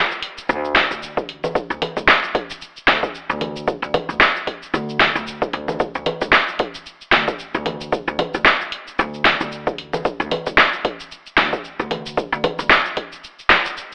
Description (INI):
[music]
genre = organic downtempo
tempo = 113 BPM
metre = 4/4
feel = swing 56% on 16ths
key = unclear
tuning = A4 = 444 Hz
[part]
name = deep house drum kit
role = drums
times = 0.1-13.9 s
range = congas, hi-hat, shaker, snare drum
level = -19 LUFS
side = equal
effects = small room reverb
[part]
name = upright bass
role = bass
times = 0.5-12.7 s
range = D2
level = -27 LUFS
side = equal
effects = tube saturation, sidechain pumping
[part]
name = electronic kick drum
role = drums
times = 1.2-13.1 s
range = none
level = -25 LUFS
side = equal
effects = small room reverb
[sound]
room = moderate echo chamber reverb, RT60 1.4 s, digital ambience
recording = telephone sound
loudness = -19 LUFS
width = mono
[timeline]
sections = 0.0-13.9 A section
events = kick drops out 13.2-13.9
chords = none